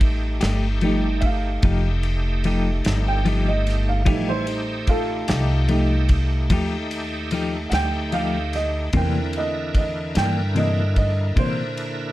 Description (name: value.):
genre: slow blues.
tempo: 49 BPM (dotted quarters).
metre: 12/8.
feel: straight.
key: unclear.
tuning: A4 = 440 Hz.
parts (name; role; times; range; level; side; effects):
dark upright piano; accompaniment; 0.0-12.1 s; E3 to G5; -27 LUFS; right 3 dB; none.
bright tonewheel organ; sustained chords; 0.0-12.1 s; D3 to Ab5; -29 LUFS; equal; overdrive, chorus vibrato, slow rotary speaker.
upright bass; bass; 0.0-12.1 s; F1 to Bb2; -23 LUFS; equal; none.
warm soul drum kit; drums; 0.0-12.0 s; kick drum, ride cymbal, snare drum; -26 LUFS; equal; none.
clean electric guitar; accompaniment; 0.4-11.6 s; C3 to G4; -24 LUFS; left 3 dB; tremolo.
room: light reverb.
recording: none.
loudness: -19 LUFS.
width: side -16 dB against mid.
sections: 0.0-12.1 A section.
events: upright piano solo 0.0-12.1.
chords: 0.0 F9; 8.9 C9.